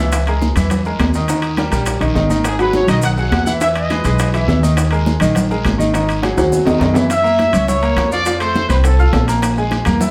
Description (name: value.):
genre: latin, salsa.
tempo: 206 BPM.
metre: 4/4.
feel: straight.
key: unclear.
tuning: A4 = 440 Hz.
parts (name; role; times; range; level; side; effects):
bright baby grand piano; accompaniment; 0.0-10.1 s; D#3 to F6; -21 LUFS; equal; none.
upright bass; bass; 0.0-10.1 s; G#1 to F#2; -20 LUFS; equal; none.
bongos; percussion; 0.1-10.1 s; none; -28 LUFS; equal; none.
congas; percussion; 0.1-10.1 s; none; -25 LUFS; equal; none.
guiro; percussion; 0.1-10.1 s; none; -36 LUFS; equal; none.
maracas; percussion; 0.1-10.1 s; none; -35 LUFS; equal; none.
timbales; percussion; 0.1-10.0 s; none; -25 LUFS; equal; none.
clear trumpet section; melody; 2.5-4.3, 7.1-9.2 s; G#4 to F#5; -20 LUFS; equal; none.
room: wet studio reverb, RT60 0.7 s.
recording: heard from further back in the room.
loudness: -15 LUFS.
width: mono.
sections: 0.0-7.1 A section; 7.1-10.1 B section.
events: drum fill 6.2-7.1.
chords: 0.1 A#m7b5/C#; 1.3 D#; 2.5 G#m7; 3.6 Emaj7; 4.8 D#sus4; 5.9 G#5; 7.1 F#7; 8.3 F; 9.4 E(#11).